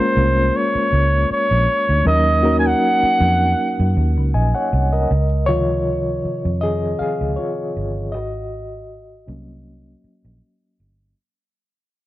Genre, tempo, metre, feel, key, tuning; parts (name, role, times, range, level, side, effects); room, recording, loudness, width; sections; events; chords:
lush 1970s-style soul; 79 BPM; 4/4; swing 54% on 16ths; A4 = 443 Hz
clear flugelhorn; melody; 0.0-4.2 s; C5 to Ab5; -18 LUFS; right 1 dB
mellow reed electric piano; accompaniment; 0.0-11.2 s; C3 to Ab5; -21 LUFS; left 1 dB; fast tremolo
vintage muted fingered electric bass; bass; 0.0-11.1 s; G1 to Gb2; -19 LUFS; equal
studio reverb; -16 LUFS; side -16 dB against mid
0.0-5.1 A section; 5.1-11.2 B section
fade-out 5.1-11.2; reed electric piano solo 5.1-11.2
0.0 Bbm7; 2.1 Ebm7; 5.1 Dbmaj7; 8.1 Ab7sus4